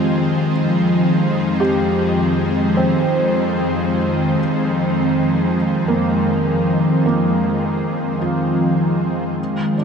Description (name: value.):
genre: ambient.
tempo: 77 BPM.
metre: 4/4.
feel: straight.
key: F minor.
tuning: A4 = 441 Hz.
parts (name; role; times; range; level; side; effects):
ethereal airy pad; sustained chords; 0.0-9.8 s; Eb3 to C4; -16 LUFS; equal; ensemble chorus, built-in reverb.
felt-muted upright piano; arpeggios; 0.0-9.8 s; Bb3 to G4; -24 LUFS; right 1 dB; analog chorus, diffuse ambient delay.
warm symphonic cello section; bass; 0.0-9.3 s; F2; -27 LUFS; equal; none.
analog drone; drone; 0.0-9.8 s; F3; -33 LUFS; right 2 dB; none.
room: wet huge ambient reverb, RT60 9.0 s.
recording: dreamy mix soaked in reverb.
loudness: -15 LUFS.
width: side -6 dB against mid.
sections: 0.0-9.4 A section.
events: none.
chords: 0.0 Fm7.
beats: | 0.04 0.81 1.59 2.37 | 3.15 3.93 4.71 5.49 | 6.27 7.05 7.83 8.61 | 9.39.